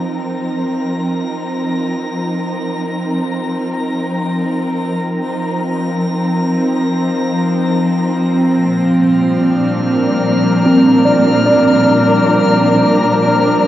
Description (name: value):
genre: ambient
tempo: free time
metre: none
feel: none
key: unclear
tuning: A4 = 440 Hz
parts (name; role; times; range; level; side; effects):
- dark studio string section; sustained chords; 0.0-13.7 s; Bb2 to Bb4; -17 LUFS; equal; none
- bowed-like drone; drone; 0.0-13.7 s; F3 to C4; -16 LUFS; equal; built-in reverb
- drifting glass-harmonics texture; texture; 0.0-13.7 s; F6 to Bb6; -27 LUFS; left 2 dB; chorus, built-in reverb
- barky tine electric piano; arpeggios; 10.7-13.7 s; C4 to D5; -14 LUFS; equal; fast stereo tremolo, diffuse ambient delay
room: wet concert hall reverb, RT60 1.8 s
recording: worn, warbling old tape, cassette tape, warbly pitch drift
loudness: -12 LUFS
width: side -13 dB against mid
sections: 0.0-13.7 A section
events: fade-in on string section 0.0-13.7; fade-in on synth texture 0.0-13.7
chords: 0.0 F7sus4; 8.7 Bb6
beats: free time